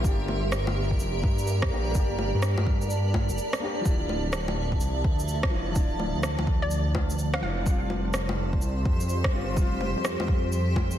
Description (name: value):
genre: future garage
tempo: 126 BPM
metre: 4/4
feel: swing 64% on 16ths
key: D minor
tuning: A4 = 444 Hz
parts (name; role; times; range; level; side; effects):
- felt-muted upright piano; accompaniment; 0.0-11.0 s; F3 to G4; -36 LUFS; left 2 dB; sidechain pumping, tape echo
- granular cloud pad; sustained chords; 0.0-11.0 s; F3 to C6; -32 LUFS; right 1 dB; built-in reverb, sidechain pumping
- dark detuned saw bass; bass; 0.0-11.0 s; D1 to G2; -28 LUFS; equal; tube saturation, sidechain pumping
- electronic kick drum; drums; 0.0-10.9 s; none; -26 LUFS; equal; overdrive
- electronic shaker, bongos and rim click; drums; 0.0-11.0 s; none; -32 LUFS; equal; overdrive
- hollow square pluck; melody; 6.6-7.5 s; D5 to F5; -36 LUFS; left 1 dB; chorus, vintage 12-bit sampler grit, tape echo
room: light reverb, digital ambience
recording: dense, heavily limited modern master, vinyl crackle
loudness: -24 LUFS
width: side -11 dB against mid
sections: 0.0-11.0 A section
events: break 3.4-3.9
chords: 0.0 Gm; 3.9 Dmadd9; 7.7 Fsus2